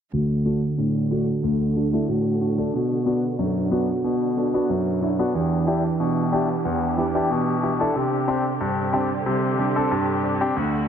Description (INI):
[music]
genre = dancehall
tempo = 92 BPM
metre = 4/4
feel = straight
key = unclear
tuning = A4 = 440 Hz
[part]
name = bright concert grand piano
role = accompaniment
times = 0.1-10.9 s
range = D2 to A4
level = -23 LUFS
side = left 3 dB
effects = low-pass filter
[part]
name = bright studio string section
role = sustained chords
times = 0.1-10.9 s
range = D3 to G4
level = -30 LUFS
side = right 2 dB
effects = low-pass filter
[part]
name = nylon-string guitar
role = arpeggios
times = 0.1-10.9 s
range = B2 to G4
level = -25 LUFS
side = right 4 dB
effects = low-pass filter
[sound]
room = light reverb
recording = none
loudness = -20 LUFS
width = side -8 dB against mid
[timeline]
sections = 0.1-10.9 A section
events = filter sweep 0.1-10.9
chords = 0.1 D; 2.7 Bm; 5.3 Em7; 8.0 Csus2